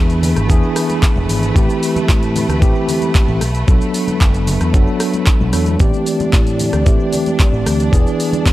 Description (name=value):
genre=nu-disco, nu disco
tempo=113 BPM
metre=4/4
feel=straight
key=A dorian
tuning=A4 = 438 Hz
part: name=tine electric piano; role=accompaniment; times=0.0-8.5 s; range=E3 to A4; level=-18 LUFS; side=equal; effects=medium stereo tremolo, sidechain pumping, analog delay
part: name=rich studio string section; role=sustained chords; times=0.0-8.5 s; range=A3 to D5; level=-26 LUFS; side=equal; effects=sidechain pumping
part: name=picked electric bass with an envelope filter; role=bass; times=0.0-8.5 s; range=E1 to A2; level=-18 LUFS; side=equal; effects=none
part: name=pop drum kit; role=drums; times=0.1-8.5 s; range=handclaps, hi-hat, rim click, shaker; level=-24 LUFS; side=equal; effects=overdrive
part: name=maracas and congas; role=percussion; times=0.1-8.5 s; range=none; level=-28 LUFS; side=left 2 dB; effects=none
part: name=electronic kick drum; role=drums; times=0.5-8.5 s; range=none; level=-13 LUFS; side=equal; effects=none
room=digital ambience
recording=dry, gritty hardware recording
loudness=-12 LUFS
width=side -15 dB against mid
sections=0.0-8.5 A section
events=none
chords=0.0 E7; 1.6 Am7; 3.4 Bm7; 5.8 Am7; 7.9 E7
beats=0.50 1.03 | 1.56 2.09 2.62 3.15 | 3.68 4.21 4.74 5.28 | 5.80 6.34 6.87 7.40 | 7.93 8.46